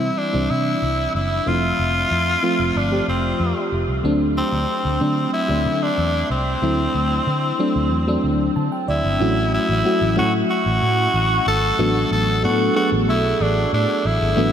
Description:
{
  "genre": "1980s-style pop",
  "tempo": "93 BPM",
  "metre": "4/4",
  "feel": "straight",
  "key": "unclear",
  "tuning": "A4 = 438 Hz",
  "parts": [
    { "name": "raspy tenor saxophone", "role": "melody", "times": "0.0-14.5 s", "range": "C4 to A4", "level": "-21 LUFS", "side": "equal", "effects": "none" },
    { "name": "FM electric piano with soft pad layer", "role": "accompaniment", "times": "0.0-14.5 s", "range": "E3 to A5", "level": "-21 LUFS", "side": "equal", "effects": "chorus, tremolo" },
    { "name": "vintage muted fingered electric bass", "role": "bass", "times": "0.0-14.5 s", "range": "F1 to D3", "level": "-23 LUFS", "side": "equal", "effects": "none" }
  ],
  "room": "wet huge ambient reverb, RT60 8.0 s",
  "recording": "dreamy mix soaked in reverb",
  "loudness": "-17 LUFS",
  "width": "side -8 dB against mid",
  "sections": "0.0-9.2 A section; 9.2-14.5 B section",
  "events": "FM electric piano fill 8.2-9.2",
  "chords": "0.0 C; 1.5 Fmaj7; 4.0 D7; 9.2 F#m7/A; 11.8 D6/A"
}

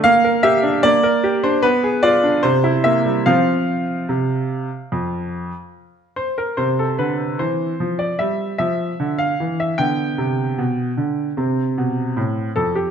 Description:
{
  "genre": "classical-period piano sonatina",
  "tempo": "75 BPM",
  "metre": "4/4",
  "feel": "straight",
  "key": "C major from 6.6 s",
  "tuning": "A4 = 440 Hz",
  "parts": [
    { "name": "bright baby grand piano", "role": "solo", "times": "0.0-12.9 s", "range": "F2 to G5", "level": "-16 LUFS", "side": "right 1 dB", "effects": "none" }
  ],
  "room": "moderate recital hall reverb, RT60 1.3 s",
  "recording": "dark, warm production",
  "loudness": "-17 LUFS",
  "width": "side -7 dB against mid",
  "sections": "0.0-6.6 A section; 6.6-12.9 B section",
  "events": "none",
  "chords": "0.0 Gm/Bb; 1.6 Bdim7; 2.4 C7; 3.3 F5; 6.6 C; 9.8 G; 11.4 C5"
}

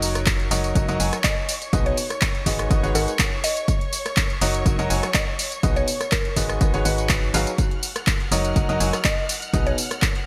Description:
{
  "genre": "piano house",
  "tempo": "123 BPM",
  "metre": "4/4",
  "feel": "swing 53% on 16ths",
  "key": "F# major",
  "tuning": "A4 = 440 Hz",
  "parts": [
    { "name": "rich studio violin section", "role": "sustained chords", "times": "0.0-10.3 s", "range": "C#5 to E#6", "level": "-36 LUFS", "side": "equal", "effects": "sidechain pumping" },
    { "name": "bright baby grand piano", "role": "riff", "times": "0.0-9.8 s", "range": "B2 to G#5", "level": "-29 LUFS", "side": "equal", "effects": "sidechain pumping, delay" },
    { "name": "organ-like FM bass", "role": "bass", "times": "0.0-9.7 s", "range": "F#1 to B1", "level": "-28 LUFS", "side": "equal", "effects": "sidechain pumping" },
    { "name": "punchy analog drum machine", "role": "drums", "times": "0.0-10.2 s", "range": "handclaps, hi-hat, rim click, tambourine", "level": "-28 LUFS", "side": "equal", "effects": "gated reverb" },
    { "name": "electronic kick drum", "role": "drums", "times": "0.3-10.1 s", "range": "none", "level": "-25 LUFS", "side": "equal", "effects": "none" },
    { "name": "mallet-like synth pluck", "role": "melody", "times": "1.2-9.9 s", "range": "A#4 to D#5", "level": "-32 LUFS", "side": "equal", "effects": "chorus, delay" }
  ],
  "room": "light reverb",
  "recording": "bright 1980s-style digital production",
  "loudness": "-22 LUFS",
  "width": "mono",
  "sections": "0.0-10.3 A section",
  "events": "none",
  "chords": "0.0 F#6; 1.7 B6; 2.5 G#m7; 3.7 F#6; 5.6 B6; 6.4 G#m7; 7.6 F#6; 9.5 B6"
}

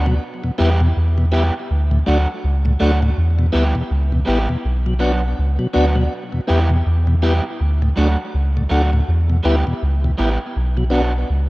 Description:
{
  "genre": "reggae",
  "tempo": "81 BPM",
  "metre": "4/4",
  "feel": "swing 60% on 16ths",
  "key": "unclear",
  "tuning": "A4 = 440 Hz",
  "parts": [
    { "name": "electric guitar at the edge of break-up", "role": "accompaniment", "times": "0.0-11.1 s", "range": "F#3 to G4", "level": "-25 LUFS", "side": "right 2 dB", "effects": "spring reverb, tape echo" },
    { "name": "soft dub sub bass", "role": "bass", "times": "0.0-11.5 s", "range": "A1 to E2", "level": "-16 LUFS", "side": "equal", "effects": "none" },
    { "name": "mellow tonewheel organ", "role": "accompaniment", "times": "0.1-11.0 s", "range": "D2 to G4", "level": "-21 LUFS", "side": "left 1 dB", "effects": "slow rotary speaker, tape echo" }
  ],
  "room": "little or no reverb",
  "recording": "rough home demo mix",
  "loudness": "-15 LUFS",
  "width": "side -20 dB against mid",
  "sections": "0.0-11.5 A section",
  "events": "none",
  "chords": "0.2 Em; 1.7 D; 3.2 Em; 4.6 Bm; 6.1 Em; 7.6 D; 9.1 Em; 10.5 Bm"
}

